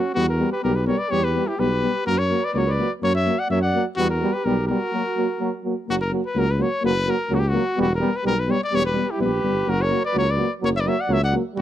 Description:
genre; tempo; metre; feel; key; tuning
balkan folk; 126 BPM; 2/4; straight; F# phrygian dominant; A4 = 440 Hz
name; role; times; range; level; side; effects
clear trumpet; melody; 0.0-11.6 s; F#4 to F#5; -24 LUFS; left 2 dB; none
warm flugelhorn; second line; 0.0-5.6, 8.7-11.6 s; B3 to D5; -29 LUFS; right 5 dB; none
dark euphonium; accompaniment; 0.0-11.6 s; A#3 to B3; -27 LUFS; left 6 dB; none
warm trombone; accompaniment; 0.1-11.6 s; F#3 to G3; -27 LUFS; right 6 dB; none
dark tuba; bass; 0.2-11.6 s; E1 to F#2; -24 LUFS; equal; none
room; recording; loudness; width
small room ambience; dry, close 1970s-style studio recording; -19 LUFS; side -12 dB against mid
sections
0.0-5.9 A section; 5.9-11.6 A section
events
break 4.9-5.9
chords
0.2 Em; 2.1 F#; 4.0 Em; 4.9 F#; 7.8 Em; 9.7 F#

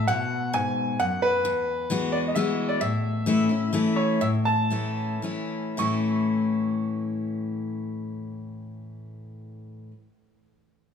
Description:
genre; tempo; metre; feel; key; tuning
country; 106-132 BPM; 3/4; straight; A major; A4 = 438 Hz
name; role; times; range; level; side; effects
bright upright piano; melody; 0.0-9.9 s; B4 to C#6; -27 LUFS; right 1 dB; none
picked steel-string acoustic guitar; accompaniment; 0.0-9.9 s; E2 to F#4; -26 LUFS; left 3 dB; none
room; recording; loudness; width
moderate plate reverb, RT60 3.4 s; studio reverb; -23 LUFS; side -7 dB against mid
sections
0.0-4.2 A section; 4.2-5.8 B section; 5.8-9.2 C section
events
slowing down 2.8-5.8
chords
0.1 B5; 1.4 Eadd9; 2.8 A

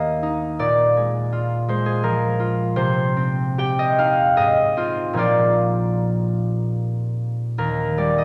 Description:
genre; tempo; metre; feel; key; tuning
classical, solo harp piece; 70-86 BPM; 3/4; rubato; unclear; A4 = 442 Hz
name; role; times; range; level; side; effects
concert harp; solo; 0.0-8.2 s; Eb2 to G5; -20 LUFS; equal; none
room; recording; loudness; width
wet scoring stage reverb, RT60 1.6 s; none; -21 LUFS; mono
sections
0.0-8.2 A section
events
none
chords
0.0 Eb; 0.6 Bb7; 2.8 Cm; 4.4 Fm/Ab; 5.2 Bb; 7.6 Eb

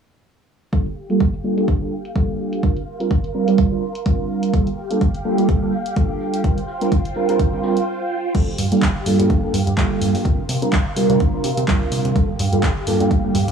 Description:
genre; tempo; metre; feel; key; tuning
filtered disco house; 126 BPM; 4/4; swing 56% on 16ths; G minor; A4 = 440 Hz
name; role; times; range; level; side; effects
reed electric piano; accompaniment; 0.7-13.3 s; G3 to Bb4; -20 LUFS; right 2 dB; phaser, sidechain pumping, low-pass filter
phased string machine; sustained chords; 0.7-13.5 s; F4 to C6; -27 LUFS; equal; ensemble chorus, phaser, sidechain pumping, low-pass filter
electronic kick drum; drums; 0.7-13.2 s; none; -19 LUFS; equal; none
punchy analog drum machine; drums; 0.7-13.5 s; crash cymbal, handclaps, hi-hat; -28 LUFS; equal; sidechain pumping on hats, low-pass filter on hats, sidechain pumping on cymbals, low-pass filter on cymbals, low-pass filter on snare, low-pass filter on room
tambourine; percussion; 0.7-13.5 s; none; -60 LUFS; left 6 dB; none
plucky analog bass; bass; 8.3-13.5 s; G1 to C3; -22 LUFS; right 1 dB; sidechain pumping, low-pass filter
room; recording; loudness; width
light reverb, digital ambience; dry, gritty hardware recording, cassette tape, small room ambience; -17 LUFS; side -7 dB against mid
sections
0.7-8.3 A section; 8.3-13.5 B section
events
filter sweep 0.7-8.3; break 7.9-8.3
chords
0.7 Gm7; 2.6 C7sus4; 4.5 Gm7; 6.4 C7sus4; 8.3 Gm7; 10.3 C7sus4; 12.2 Gm7

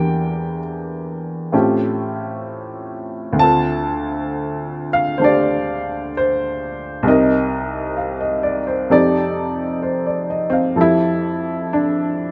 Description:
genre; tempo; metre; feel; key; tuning
jazz ballad; 65 BPM; 4/4; swing 67% on 8ths; unclear; A4 = 440 Hz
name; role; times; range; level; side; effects
clear upright piano; solo; 0.0-12.3 s; C2 to A5; -19 LUFS; equal; none
room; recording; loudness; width
moderate echo chamber reverb, RT60 2.5 s; nothing above 7.8 kHz; -19 LUFS; mono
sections
0.0-10.8 A section; 10.8-12.3 B section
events
none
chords
0.0 Em7b5; 1.5 A7alt; 3.4 Dm7; 7.1 Cm7; 8.9 F13; 10.8 Fmaj9

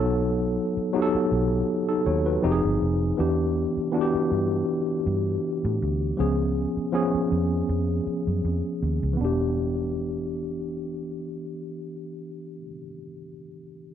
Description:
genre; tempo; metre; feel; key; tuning
lush 1970s-style soul; 80 BPM; 4/4; swing 54% on 16ths; E dorian; A4 = 436 Hz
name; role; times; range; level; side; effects
mellow tine electric piano; accompaniment; 0.0-13.9 s; E3 to C#5; -25 LUFS; left 1 dB; fast stereo tremolo
vintage muted fingered electric bass; bass; 0.0-12.6 s; E1 to A2; -27 LUFS; equal; none
room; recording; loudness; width
digital ambience; dry, close 1970s-style studio recording; -23 LUFS; side -9 dB against mid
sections
0.0-9.2 A section; 9.2-12.2 B section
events
none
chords
0.0 B7; 2.4 Fm7; 3.2 Em7; 6.2 C#7; 9.2 Em7

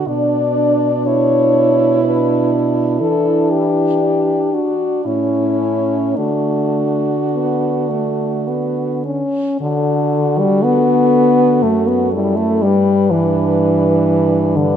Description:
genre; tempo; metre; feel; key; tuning
classical, lyrical piece for horn quartet; 52-63 BPM; 3/4; rubato; D major; A4 = 441 Hz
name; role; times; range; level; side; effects
clear French horn; second line; 0.0-14.8 s; C#4 to F#4; -21 LUFS; right 10 dB; none
dark French horn; bass; 0.0-14.8 s; F#2 to E3; -21 LUFS; right 3 dB; none
warm French horn; melody; 0.1-14.8 s; D4 to D5; -20 LUFS; left 5 dB; none
mellow French horn; accompaniment; 0.1-14.8 s; D3 to D4; -16 LUFS; left 1 dB; none
room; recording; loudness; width
moderate scoring stage reverb, RT60 1.7 s; none; -13 LUFS; side -8 dB against mid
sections
0.0-9.6 A section; 9.6-14.8 A section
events
none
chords
0.1 Bm; 3.0 Em7; 5.1 A; 6.2 D; 12.6 G

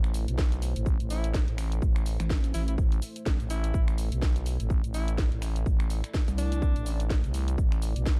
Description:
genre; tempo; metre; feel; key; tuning
bass house; 125 BPM; 4/4; swing 58% on 16ths; A minor; A4 = 440 Hz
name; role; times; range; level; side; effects
deep dark ambient pad; sustained chords; 0.0-8.2 s; A3 to D5; -46 LUFS; equal; chorus, built-in reverb, sidechain pumping
growling FM bass; bass; 0.0-8.2 s; A1 to C2; -31 LUFS; equal; tube saturation, sidechain pumping
house drum kit; drums; 0.0-8.2 s; finger snaps, hi-hat, shaker, snare drum; -41 LUFS; equal; none
electronic kick drum; drums; 0.4-8.2 s; none; -29 LUFS; equal; none
clear alto saxophone; melody; 1.1-7.1 s; D4 to E4; -43 LUFS; equal; dub echo
pulsing pluck wobble bass; bass; 2.2-3.4, 6.3-6.7 s; A1 to C2; -31 LUFS; equal; chorus, overdrive, sidechain pumping
room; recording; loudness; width
digital ambience; dark, warm production; -28 LUFS; mono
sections
0.0-8.2 A section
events
none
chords
0.0 Am

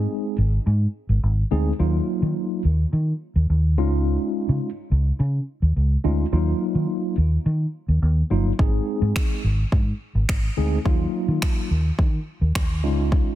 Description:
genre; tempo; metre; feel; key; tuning
dance-pop; 106 BPM; 4/4; straight; Eb dorian; A4 = 440 Hz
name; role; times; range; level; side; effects
mellow tine electric piano; accompaniment; 0.0-13.3 s; Gb3 to Ab4; -25 LUFS; equal; medium stereo tremolo, sidechain pumping
vintage muted fingered electric bass; bass; 0.0-13.2 s; G1 to Eb3; -20 LUFS; equal; sidechain pumping
deep house drum kit; drums; 8.6-13.3 s; finger snaps, kick drum; -22 LUFS; equal; overdrive, soft clipping on snare
room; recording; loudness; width
digital ambience; dense, heavily limited modern master; -20 LUFS; side -13 dB against mid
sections
0.0-13.3 A section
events
none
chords
0.0 Ab; 1.8 Ebmadd9; 3.8 Dbadd9; 6.3 Ebmadd9; 8.6 Ab; 10.9 Ebmadd9; 12.8 Dbadd9

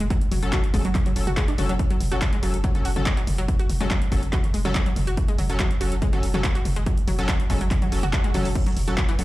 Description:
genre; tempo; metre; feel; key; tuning
driving peak-time techno; 142 BPM; 4/4; straight; F# minor; A4 = 441 Hz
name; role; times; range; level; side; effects
analog pluck; riff; 0.0-9.2 s; E3 to F#4; -30 LUFS; equal; chorus, tube saturation, sidechain pumping, digital delay
saturated sub bass; bass; 0.0-9.2 s; F#1; -26 LUFS; equal; sidechain pumping, low-pass filter
punchy analog drum machine; drums; 0.0-9.2 s; crash cymbal, handclaps, hi-hat, toms; -30 LUFS; equal; overdrive, studio reverb
electronic kick drum; drums; 0.1-9.1 s; none; -23 LUFS; equal; overdrive, studio reverb
sync-sweep polysynth; stabs; 0.4-9.2 s; F#3 to A4; -30 LUFS; left 1 dB; chorus, sidechain pumping, digital delay
swell; sound effects; 7.9-8.6 s; none; -36 LUFS; right 1 dB; none
room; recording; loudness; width
little or no reverb; played on a big sound system in a bare room, large studio reverb; -20 LUFS; side -17 dB against mid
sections
0.0-9.2 A section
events
swell 7.9-8.6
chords
0.0 F#m

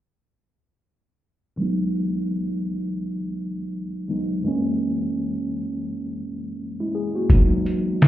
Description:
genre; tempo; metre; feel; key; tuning
hip hop, boom-bap hip-hop; 84 BPM; 4/4; swing 62% on 16ths; C# dorian; A4 = 437 Hz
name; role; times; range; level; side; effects
mellow tine electric piano; accompaniment; 1.6-8.1 s; C#2 to G#4; -24 LUFS; equal; medium stereo tremolo, cassette tape, high-pass filter, low-pass filter, plate reverb
trip hop sampler-style drum kit; drums; 7.3-8.1 s; hi-hat, kick drum, snare drum; -14 LUFS; equal; none
room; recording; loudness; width
wet studio reverb, RT60 0.5 s; heard muffled through a wall, club reverb, EQ; -22 LUFS; side -14 dB against mid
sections
1.6-8.1 A section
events
filter sweep on tine electric piano 1.6-8.1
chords
1.6 C#m11; 4.4 F#7; 7.3 C#m11

